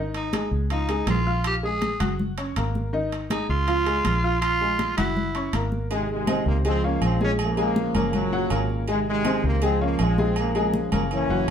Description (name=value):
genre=latin, salsa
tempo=162 BPM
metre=4/4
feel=straight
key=Ab major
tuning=A4 = 439 Hz
part: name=bright upright piano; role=accompaniment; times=0.0-11.5 s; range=Eb3 to Gb6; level=-27 LUFS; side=left 1 dB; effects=none
part: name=fingered electric bass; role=bass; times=0.0-11.5 s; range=Gb1 to Db2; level=-26 LUFS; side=equal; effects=none
part: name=congas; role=percussion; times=0.1-11.5 s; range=none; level=-29 LUFS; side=left 1 dB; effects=none
part: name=timbales and agogo bells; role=percussion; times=0.1-11.5 s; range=none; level=-33 LUFS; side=right 6 dB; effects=none
part: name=raspy tenor saxophone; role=melody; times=0.2-5.7 s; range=Eb4 to Ab4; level=-26 LUFS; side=right 1 dB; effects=none
part: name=bright trombone section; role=melody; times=5.9-11.5 s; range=Bb2 to Db4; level=-26 LUFS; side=equal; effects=none
room=moderate studio reverb, RT60 0.5 s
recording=heard from further back in the room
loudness=-21 LUFS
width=side -8 dB against mid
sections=0.0-5.9 A section; 5.9-11.5 B section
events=none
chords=0.0 Ab5; 0.7 Db; 1.4 Bb5; 2.2 Gb; 2.9 Ab5; 3.7 Db; 4.4 Bb5; 5.2 Gb7; 5.9 Ab; 6.7 Db; 7.4 Bbm7; 8.9 Ab; 9.6 Db; 10.4 Bbm7